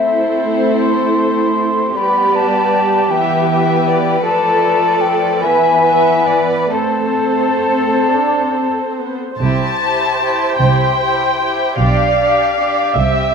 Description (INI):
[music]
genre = classical, slow romantic movement for symphony orchestra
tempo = 43-53 BPM (dotted quarters)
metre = 6/8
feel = rubato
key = A minor, C major from 9.4 s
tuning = A4 = 440 Hz
[part]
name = muted chamber violin section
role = melody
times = 0.0-13.3 s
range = C5 to A5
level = -21 LUFS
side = left 4 dB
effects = none
[part]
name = concert flute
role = second line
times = 0.0-8.9 s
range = E5 to C6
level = -16 LUFS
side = left 2 dB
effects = none
[part]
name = muted chamber violin section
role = second line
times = 0.0-13.3 s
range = A3 to B4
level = -20 LUFS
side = left 3 dB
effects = none
[part]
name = muted chamber viola section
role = accompaniment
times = 0.0-13.3 s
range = E3 to E5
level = -19 LUFS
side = right 5 dB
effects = none
[part]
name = muted symphonic cello section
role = bass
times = 0.0-13.3 s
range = B2 to B4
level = -20 LUFS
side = right 3 dB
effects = none
[part]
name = muted chamber double bass section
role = bass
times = 9.4-13.3 s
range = B1 to C2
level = -19 LUFS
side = right 4 dB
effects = none
[sound]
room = moderate scoring stage reverb, RT60 1.7 s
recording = minimal, uncompressed stereo recording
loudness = -12 LUFS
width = side -6 dB against mid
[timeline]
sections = 0.0-9.4 A section; 9.4-13.3 B section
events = none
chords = 0.0 Am; 2.0 Em/G; 4.3 Dm/F; 5.4 E7; 6.7 Am; 9.4 C; 11.8 G7/B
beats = 0.81 | 1.98 3.12 | 4.25 5.43 | 6.72 8.09 | 9.40 10.60 | 11.79 12.96